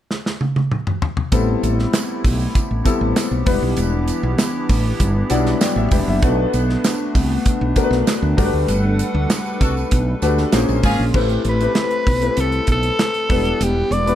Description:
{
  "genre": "polished 1980s jazz-funk pop",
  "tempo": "98 BPM",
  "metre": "4/4",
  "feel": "straight",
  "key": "A dorian",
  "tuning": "A4 = 442 Hz",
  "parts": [
    { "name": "modern studio drum kit", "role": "drums", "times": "0.1-14.2 s", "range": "crash cymbal, hi-hat, kick drum, snare drum, toms", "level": "-20 LUFS", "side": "right 1 dB", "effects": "none" },
    { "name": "clear baby grand piano", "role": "accompaniment", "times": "1.3-14.2 s", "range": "F#3 to B5", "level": "-22 LUFS", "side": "left 4 dB", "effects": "analog chorus" },
    { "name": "hollow soft pad", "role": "sustained chords", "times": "1.7-11.1 s", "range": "E3 to F#5", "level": "-26 LUFS", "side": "right 1 dB", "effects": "chorus" },
    { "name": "woody fretless electric bass", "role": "bass", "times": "1.3-14.1 s", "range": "E1 to D2", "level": "-19 LUFS", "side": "equal", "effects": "none" },
    { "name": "tambourine", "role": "percussion", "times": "1.3-11.0 s", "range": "none", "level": "-35 LUFS", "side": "right 6 dB", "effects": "none" },
    { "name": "warm horn section", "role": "second line", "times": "9.6-11.0 s", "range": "Db4 to A4", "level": "-25 LUFS", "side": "equal", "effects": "none" },
    { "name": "growling alto saxophone", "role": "melody", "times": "11.5-14.2 s", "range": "G4 to D5", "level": "-20 LUFS", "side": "left 1 dB", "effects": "none" }
  ],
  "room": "little or no reverb",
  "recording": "dark, warm production",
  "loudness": "-16 LUFS",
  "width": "side -11 dB against mid",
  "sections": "0.0-1.3 A section; 1.3-11.1 B section; 11.1-14.2 C section",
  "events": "drum fill 0.1-1.3; grand piano fill 5.0-6.2; band accent 8.7-11.1",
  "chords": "0.0 N.C.; 1.3 Am9; 3.5 Em7; 6.2 Bm7; 8.4 Gmaj9; 10.5 Bbm9; 11.1 Am9; 13.3 Em7"
}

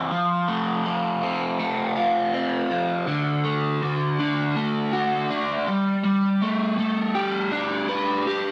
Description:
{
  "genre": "rock",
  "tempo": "81 BPM",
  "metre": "4/4",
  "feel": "straight",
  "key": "G mixolydian",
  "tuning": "A4 = 440 Hz",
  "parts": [
    { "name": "raw garage guitar", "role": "solo", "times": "0.0-8.5 s", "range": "D3 to B4", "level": "-24 LUFS", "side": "equal", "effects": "overdrive, flanger" }
  ],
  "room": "light reverb",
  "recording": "none",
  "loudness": "-24 LUFS",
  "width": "mono",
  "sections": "0.0-8.5 A section",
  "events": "none",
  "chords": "0.1 F; 3.1 D; 5.7 Gadd9"
}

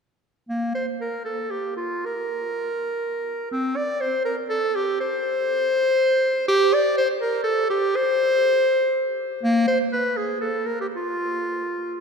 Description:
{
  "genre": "classical, baroque-style fantasia for unaccompanied clarinet",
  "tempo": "108-127 BPM",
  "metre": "3/4",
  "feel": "rubato",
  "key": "Bb major, F major from 6.5 s",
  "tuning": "A4 = 440 Hz",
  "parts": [
    { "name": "clear clarinet", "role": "solo", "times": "0.5-12.0 s", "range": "Bb3 to D5", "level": "-21 LUFS", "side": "equal", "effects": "none" }
  ],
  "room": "wet cathedral reverb, RT60 5.1 s",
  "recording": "minimal, uncompressed stereo recording",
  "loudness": "-21 LUFS",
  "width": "side -5 dB against mid",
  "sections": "0.5-12.0 A section",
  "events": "none",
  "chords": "none"
}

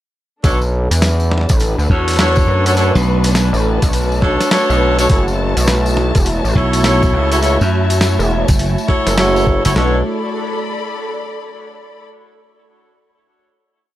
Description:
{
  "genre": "glitch hop",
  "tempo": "103 BPM",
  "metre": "4/4",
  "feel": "swing 63% on 16ths",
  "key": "B minor",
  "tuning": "A4 = 439 Hz",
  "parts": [
    { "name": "warbly tape-like pad", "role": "sustained chords", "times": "1.2-10.0 s", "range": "A3 to C#5", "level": "-24 LUFS", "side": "equal", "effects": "chorus, built-in reverb, vintage 12-bit sampler grit, sidechain pumping" },
    { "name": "warm horn section", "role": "stabs", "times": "0.4-10.0 s", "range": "D4 to C#5", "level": "-18 LUFS", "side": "equal", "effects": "sidechain pumping, tape echo" },
    { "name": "gritty driven synth bass", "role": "bass", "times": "0.4-10.0 s", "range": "E1 to F#2", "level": "-15 LUFS", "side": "equal", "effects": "tube saturation" },
    { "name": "boom bap sampler-style drum kit", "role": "drums", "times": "0.4-9.9 s", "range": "kick drum, snare drum", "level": "-15 LUFS", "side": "equal", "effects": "studio reverb" },
    { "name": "boom bap sampler-style drum kit", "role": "drums", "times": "0.4-9.7 s", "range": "hi-hat, snare drum", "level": "-19 LUFS", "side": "equal", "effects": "studio reverb" },
    { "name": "tambourine", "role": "percussion", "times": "0.4-9.7 s", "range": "none", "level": "-27 LUFS", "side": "left 4 dB", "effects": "none" },
    { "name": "warm studio string section", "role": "texture", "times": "0.4-12.1 s", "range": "D4 to B5", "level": "-24 LUFS", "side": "left 2 dB", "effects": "sidechain pumping" },
    { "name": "slap bass", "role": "bass", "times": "1.9-9.7 s", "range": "F#1 to F#2", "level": "-15 LUFS", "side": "equal", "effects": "none" }
  ],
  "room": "little or no reverb",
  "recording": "dry, gritty hardware recording",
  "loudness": "-12 LUFS",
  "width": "side -14 dB against mid",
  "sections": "0.4-9.8 drop; 9.8-12.1 final chord",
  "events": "drop 0.4-9.8",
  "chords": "0.4 Bm7; 5.1 F#m7; 9.8 Bm7"
}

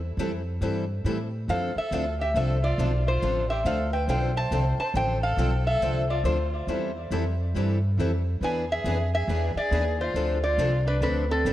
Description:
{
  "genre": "acoustic string swing (jazz manouche)",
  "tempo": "138 BPM",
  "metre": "4/4",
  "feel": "swing 63% on 8ths",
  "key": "unclear",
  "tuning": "A4 = 440 Hz",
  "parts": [
    { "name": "upright bass", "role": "bass", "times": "0.0-11.5 s", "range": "G1 to A2", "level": "-26 LUFS", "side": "equal", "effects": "none" },
    { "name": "picked plugged-in steel-string acoustic guitar", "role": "accompaniment", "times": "0.2-11.5 s", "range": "D3 to B4", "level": "-36 LUFS", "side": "right 5 dB", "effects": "tape echo" },
    { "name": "picked steel-string acoustic guitar", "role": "accompaniment", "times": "0.2-11.5 s", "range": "D3 to A4", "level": "-33 LUFS", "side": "left 4 dB", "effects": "tape echo" },
    { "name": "metal-body resonator slide guitar", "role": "melody", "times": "1.5-11.5 s", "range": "A4 to A5", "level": "-28 LUFS", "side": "equal", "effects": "tape echo" },
    { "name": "warm violin", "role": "second line", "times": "1.5-11.5 s", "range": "C4 to C5", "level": "-35 LUFS", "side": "right 2 dB", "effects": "none" }
  ],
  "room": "light reverb, small room reverb",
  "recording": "echo-heavy mix",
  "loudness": "-23 LUFS",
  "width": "side -14 dB against mid",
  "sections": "0.0-11.5 A section",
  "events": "none",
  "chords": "0.0 Am7; 1.5 Dm7; 6.7 Am7; 8.4 E7; 10.2 Dm7"
}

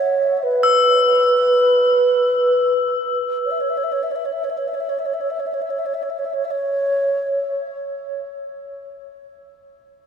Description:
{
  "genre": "world meditative, free-time meditation music",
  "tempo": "free time",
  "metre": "none",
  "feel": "none",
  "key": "unclear",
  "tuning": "A4 = 440 Hz",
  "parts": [
    { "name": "mellow wooden-headed alto flute", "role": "melody", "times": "0.0-7.5 s", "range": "B4 to E5", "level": "-18 LUFS", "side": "right 1 dB", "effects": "ping-pong delay" },
    { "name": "crotales", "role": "texture", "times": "0.0-9.8 s", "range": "E6 to B6", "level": "-22 LUFS", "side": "left 6 dB", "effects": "none" }
  ],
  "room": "wet huge ambient reverb, RT60 5.3 s",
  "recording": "none",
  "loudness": "-17 LUFS",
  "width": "side -7 dB against mid",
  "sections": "0.0-10.1 A section",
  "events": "none",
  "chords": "none"
}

